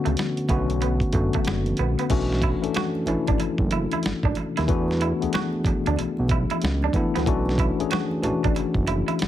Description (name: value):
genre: R&B, neo-soul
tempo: 93 BPM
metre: 4/4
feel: swing 64% on 16ths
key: B dorian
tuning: A4 = 442 Hz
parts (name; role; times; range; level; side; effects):
- tine electric piano; accompaniment; 0.0-9.3 s; C#3 to A4; -25 LUFS; left 4 dB; auto-pan
- electric guitar through a small old amp; second line; 0.1-9.2 s; A3 to F#4; -30 LUFS; right 8 dB; none
- fat analog bass; bass; 0.1-9.3 s; F#1 to E2; -25 LUFS; right 1 dB; none
- dusty soul sampler-style drum kit; drums; 0.1-9.3 s; crash cymbal, hi-hat, kick drum, snare drum; -26 LUFS; right 1 dB; none
- congas; percussion; 0.2-9.3 s; none; -37 LUFS; right 3 dB; none
room: light reverb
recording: heavily compressed radio sound, multiband compression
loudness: -21 LUFS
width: side -12 dB against mid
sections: 0.0-2.1 A section; 2.1-9.3 B section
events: none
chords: 0.0 Bm9; 2.1 Bm11; 4.7 E9sus4; 7.3 Bm11